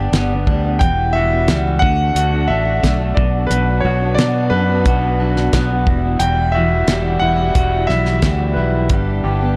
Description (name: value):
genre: folk rock and heartland rock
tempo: 89 BPM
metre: 4/4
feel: straight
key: E minor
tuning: A4 = 440 Hz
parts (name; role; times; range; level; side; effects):
- clear concert grand piano; melody; 0.0-9.6 s; B4 to G5; -23 LUFS; equal; analog delay
- picked steel-string acoustic guitar; accompaniment; 0.0-9.6 s; E2 to G4; -26 LUFS; equal; analog delay
- electric guitar through a small old amp; riff; 0.0-9.6 s; E2 to G4; -25 LUFS; equal; analog delay
- fingered electric bass; bass; 0.0-9.6 s; E1 to B2; -21 LUFS; equal; none
- damped 70s drum kit; drums; 0.1-9.1 s; hi-hat, kick drum, snare drum; -20 LUFS; equal; none
- dark chamber string section; sustained chords; 0.8-9.6 s; G3 to G4; -32 LUFS; equal; none
room: small room reverb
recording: echo-heavy mix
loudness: -16 LUFS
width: mono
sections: 0.0-9.6 A section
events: none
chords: 0.0 G; 0.8 Emadd9; 1.8 D; 3.2 Bm; 5.9 Emadd9; 8.9 G